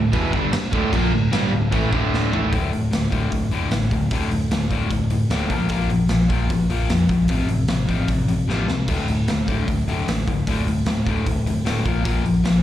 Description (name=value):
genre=punk rock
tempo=151 BPM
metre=4/4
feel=straight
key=D minor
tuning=A4 = 438 Hz
part: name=biting overdriven guitar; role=riff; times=0.0-2.5 s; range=D2 to Bb3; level=-27 LUFS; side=right 3 dB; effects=slapback echo
part: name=distorted electric guitar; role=riff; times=0.0-12.6 s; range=D2 to Bb3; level=-22 LUFS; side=left 3 dB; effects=distortion
part: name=distorted electric guitar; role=riff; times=0.0-2.5 s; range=D2 to Bb3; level=-25 LUFS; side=right 11 dB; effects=distortion, slapback echo
part: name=overdriven picked electric bass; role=bass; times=0.0-12.6 s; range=D1 to F2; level=-24 LUFS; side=equal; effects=none
part: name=raw garage drum kit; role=drums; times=0.1-12.5 s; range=crash cymbal, hi-hat, kick drum, snare drum, toms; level=-24 LUFS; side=right 1 dB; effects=none
room=little or no reverb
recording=live gig heard through the venue's PA, club reverb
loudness=-18 LUFS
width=side -12 dB against mid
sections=0.0-2.5 A section; 2.5-12.6 B section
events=drum fill 2.1-2.5, 8.5-8.9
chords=0.0 Dm; 2.5 D5; 5.5 Bb5; 7.3 F/A; 8.9 D5; 11.9 Bb5